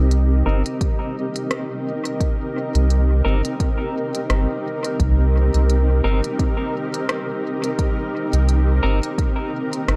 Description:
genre	ambient dub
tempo	86 BPM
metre	4/4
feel	swing 56% on 16ths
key	C minor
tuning	A4 = 440 Hz
part	granular cloud pad	sustained chords	0.0-10.0 s	C4 to Eb5	-27 LUFS	equal	built-in reverb
part	soft dub sub bass	bass	0.0-10.0 s	G1 to C2	-18 LUFS	equal	none
part	bubbling stepped-filter texture	texture	0.3-10.0 s	Bb4	-34 LUFS	equal	chorus, built-in reverb
part	organic electronic drum kit	drums	0.1-10.0 s	hi-hat, rim click	-30 LUFS	equal	dub echo
part	clean electric guitar	stabs	0.5-9.0 s	C4 to Bb4	-31 LUFS	equal	low-pass filter, dub echo
part	electronic kick drum	drums	0.8-9.3 s	none	-24 LUFS	equal	none
room	light reverb, digital ambience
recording	echo-heavy mix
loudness	-21 LUFS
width	mono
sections	0.0-10.0 A section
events	filter sweep on clean electric guitar 0.0-10.0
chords	0.0 Cm7

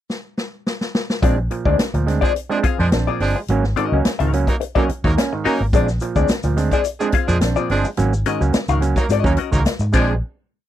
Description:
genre	funk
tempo	107 BPM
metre	4/4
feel	straight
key	Bb mixolydian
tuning	A4 = 440 Hz
part	swinging big-band drum kit	drums	0.1-10.1 s	crash cymbal, hi-hat, kick drum, snare drum	-21 LUFS	equal	none
part	vintage hollow-body jazz guitar	accompaniment	1.2-10.1 s	C4 to F5	-22 LUFS	left 11 dB	wah
part	overdriven clav	stabs	1.2-10.2 s	Ab2 to D4	-22 LUFS	right 5 dB	none
part	vintage muted fingered electric bass	bass	1.2-10.2 s	G1 to Ab2	-19 LUFS	equal	none
part	clear horn section	second line	2.2-10.1 s	F3 to Bb4	-23 LUFS	right 3 dB	none
part	tube shaker	percussion	5.7-10.2 s	none	-38 LUFS	left 6 dB	none
room	little or no reverb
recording	dry, close 1970s-style studio recording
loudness	-16 LUFS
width	side -12 dB against mid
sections	0.0-1.2 pickup bar; 1.2-10.2 groove; 10.2-10.7 final hit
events	drum fill 0.1-1.2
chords	0.0 N.C.; 1.2 Bb9; 3.5 Ab9sus4; 5.7 Bb9; 8.0 Ab9sus4; 9.9 Bb9

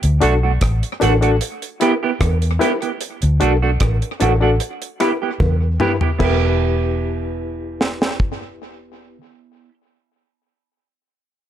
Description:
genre	roots reggae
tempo	75 BPM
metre	4/4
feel	straight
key	E minor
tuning	A4 = 440 Hz
part	vintage muted fingered electric bass	bass	0.0-9.2 s	E1 to E2	-18 LUFS	equal	none
part	deep reggae drum kit	drums	0.0-8.4 s	crash cymbal, hi-hat, kick drum, rim click, snare drum, toms	-22 LUFS	equal	tape echo
part	semi-hollow electric guitar	accompaniment	0.2-9.7 s	A3 to G4	-22 LUFS	right 8 dB	lush chorus, tape echo, plate reverb
part	barky reed electric piano	stabs	0.2-9.2 s	D4 to B4	-22 LUFS	left 6 dB	overdrive, fast tremolo, plate reverb
part	bongos	percussion	1.0-6.6 s	none	-27 LUFS	right 3 dB	none
room	light reverb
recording	none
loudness	-16 LUFS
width	side -10 dB against mid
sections	0.0-6.2 A section; 6.2-9.4 B section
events	drum fill 5.4-6.2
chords	0.0 D; 1.4 Em; 3.0 D; 4.6 Em

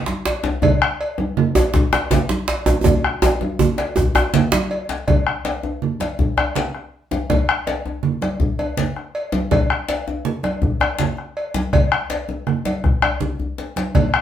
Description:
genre	west african traditional, West African drum ensemble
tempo	108 BPM (dotted quarters)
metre	12/8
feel	straight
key	none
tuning	none
part	congas	percussion	0.1-14.1 s	none	-22 LUFS	right 5 dB	none
part	djembe	percussion	0.1-4.7 s	none	-19 LUFS	right 2 dB	none
part	cowbell	percussion	0.3-14.1 s	none	-26 LUFS	equal	none
part	bombo	percussion	0.4-14.2 s	none	-20 LUFS	left 2 dB	none
part	djembe	percussion	0.4-14.1 s	none	-23 LUFS	left 3 dB	none
room	wet studio reverb, RT60 0.6 s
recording	band playing live in one room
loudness	-17 LUFS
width	side -10 dB against mid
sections	0.0-5.1 A section; 5.1-14.2 B section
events	drum fill 2.9-5.1, 13.0-13.9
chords	none

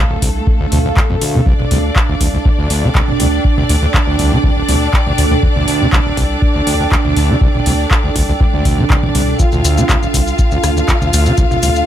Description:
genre	acid house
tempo	121 BPM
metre	4/4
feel	swing 53% on 16ths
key	D minor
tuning	A4 = 439 Hz
part	bright studio string section	sustained chords	0.0-11.9 s	A3 to F5	-19 LUFS	equal	sidechain pumping
part	overdriven acid bass	riff	0.0-11.7 s	D1 to D3	-18 LUFS	equal	distortion, sidechain pumping, tape echo
part	warbly tape-like pad	texture	0.0-11.9 s	D4 to G5	-21 LUFS	right 4 dB	chorus, built-in reverb, phaser, sidechain pumping
part	saturated sub bass	bass	0.2-11.8 s	C2 to D2	-18 LUFS	equal	sidechain pumping
part	booming analog drum machine	drums	0.2-11.7 s	handclaps, hi-hat, rim click, toms	-20 LUFS	equal	none
part	electronic kick drum	drums	0.2-11.5 s	none	-14 LUFS	equal	none
part	maracas	percussion	9.4-11.9 s	none	-22 LUFS	left 5 dB	none
room	light reverb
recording	none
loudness	-11 LUFS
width	side -11 dB against mid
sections	0.0-11.9 A section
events	drum fill 8.4-9.4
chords	0.0 Dm

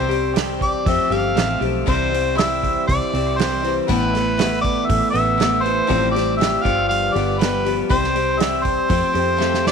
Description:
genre	folk rock and heartland rock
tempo	119 BPM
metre	4/4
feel	straight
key	C major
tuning	A4 = 440 Hz
part	mellow harmonica	melody	0.0-9.7 s	B4 to F5	-21 LUFS	equal	tape echo
part	picked acoustic archtop guitar	accompaniment	0.0-9.7 s	G2 to G4	-23 LUFS	left 13 dB	none
part	electric guitar through a small old amp	riff	0.0-9.7 s	G2 to G4	-25 LUFS	right 14 dB	none
part	fingered electric bass	bass	0.0-9.7 s	G1 to F2	-25 LUFS	equal	none
part	natural country drum kit	drums	0.1-9.7 s	hi-hat, kick drum, snare drum	-24 LUFS	right 4 dB	none
room	light reverb, small room ambience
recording	1960s-style stereo with parts hard left and right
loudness	-16 LUFS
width	side -6 dB against mid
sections	0.0-9.7 A section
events	drum fill 9.4-9.7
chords	0.0 C; 0.9 Fadd9; 1.9 C; 3.9 Asus2; 5.9 Fadd9/A; 6.6 G7; 7.9 C; 8.9 Fadd9

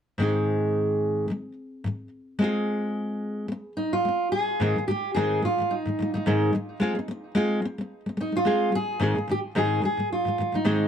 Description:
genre	pop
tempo	109 BPM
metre	4/4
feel	swing 55% on 16ths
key	Ab major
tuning	A4 = 443 Hz
part	nylon-string guitar	accompaniment	0.2-10.9 s	Ab2 to Ab4	-25 LUFS	left 1 dB	none
part	fingerpicked steel-string acoustic guitar	melody	3.8-10.9 s	Eb4 to Ab4	-26 LUFS	right 1 dB	tape echo
room	moderate small room reverb, RT60 0.5 s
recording	dark, warm production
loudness	-24 LUFS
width	side -8 dB against mid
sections	0.2-4.6 A section; 4.6-10.9 B section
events	none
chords	0.2 Ab; 2.4 Fm/Ab; 4.6 Ab; 6.8 Fm/Ab; 9.0 Ab

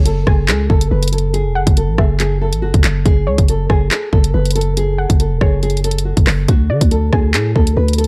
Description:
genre	hip hop, drill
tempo	140 BPM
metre	4/4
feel	half-time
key	F# minor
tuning	A4 = 441 Hz
part	nylon-string guitar	melody	0.0-8.1 s	F#4 to B4	-24 LUFS	equal	tape echo
part	warbly dusty pluck	second line	0.0-8.1 s	C#5 to G#5	-28 LUFS	equal	chorus, tape echo
part	growling 808-style bass	bass	0.0-8.1 s	E1 to D3	-18 LUFS	equal	none
part	drill drum kit	drums	0.1-8.1 s	handclaps, hi-hat, kick drum, rim click	-17 LUFS	equal	none
room	little or no reverb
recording	dark, warm production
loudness	-15 LUFS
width	mono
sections	0.0-8.1 A section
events	none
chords	0.0 F#madd9; 6.5 D

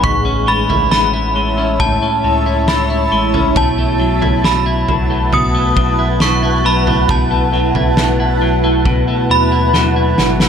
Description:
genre	dream pop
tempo	68 BPM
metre	4/4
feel	straight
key	unclear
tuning	A4 = 440 Hz
part	synth chime	melody	0.0-10.5 s	A5 to D#6	-17 LUFS	equal	ensemble chorus, phaser, ping-pong delay
part	granular cloud pad	sustained chords	0.0-10.5 s	E4 to A5	-18 LUFS	right 2 dB	built-in reverb
part	clean electric guitar	arpeggios	0.0-10.5 s	A2 to E4	-18 LUFS	left 2 dB	analog chorus, ping-pong delay
part	warm sub bass	bass	0.0-10.5 s	G#1 to D#2	-20 LUFS	equal	none
part	loose indie drum kit	drums	0.0-10.5 s	kick drum, snare drum, toms	-19 LUFS	equal	none
room	moderate booth ambience, RT60 0.3 s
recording	none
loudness	-12 LUFS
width	side -7 dB against mid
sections	0.0-10.5 A section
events	drum fill 9.7-10.5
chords	0.0 Amaj7; 3.6 B7sus4

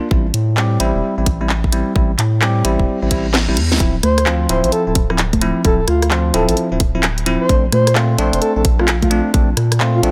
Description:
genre	UK garage, two-step garage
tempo	130 BPM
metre	4/4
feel	swing 64% on 16ths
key	D minor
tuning	A4 = 440 Hz
part	bell-like tine electric piano	stabs	0.0-10.1 s	F3 to G4	-22 LUFS	equal	phaser, dub echo
part	saturated sub bass	bass	0.1-10.1 s	D1 to Bb2	-20 LUFS	equal	none
part	electronic kick drum	drums	0.1-9.5 s	none	-19 LUFS	equal	studio ambience
part	garage drum kit	drums	0.3-10.1 s	congas, handclaps, hi-hat, rim click, snare drum	-21 LUFS	equal	studio ambience
part	reverse cymbal	sound effects	3.0-3.8 s	none	-30 LUFS	equal	none
part	breathy flute-like synth lead	melody	4.0-10.1 s	F4 to C5	-22 LUFS	equal	chorus, tremolo, cassette tape
room	digital ambience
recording	none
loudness	-16 LUFS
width	mono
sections	0.0-10.1 A section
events	reverse cymbal 3.0-3.8; drum fill 3.3-3.8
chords	0.1 Am7; 3.8 Dm9; 7.5 Bbmaj9

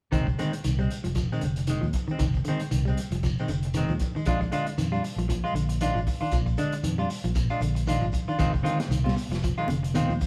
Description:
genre	afrobeat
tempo	116 BPM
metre	4/4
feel	swing 56% on 16ths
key	F dorian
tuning	A4 = 440 Hz
part	electric guitar at the edge of break-up	arpeggios	0.1-10.3 s	D3 to G3	-33 LUFS	equal	none
part	clean electric guitar	stabs	0.1-10.2 s	Eb3 to F4	-33 LUFS	equal	none
part	fingered electric bass	bass	0.1-10.2 s	F1 to F2	-31 LUFS	equal	none
part	crunchy breakbeat drum kit	drums	0.1-10.3 s	hi-hat, kick drum, snare drum	-34 LUFS	equal	none
part	shekere	percussion	0.1-10.3 s	none	-37 LUFS	equal	none
part	congas	percussion	8.4-10.1 s	none	-36 LUFS	equal	none
room	moderate studio reverb, RT60 0.8 s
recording	band playing live in one room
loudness	-27 LUFS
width	mono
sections	0.1-10.3 A section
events	none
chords	0.1 Fm7; 4.3 Bb7; 8.4 Fm7

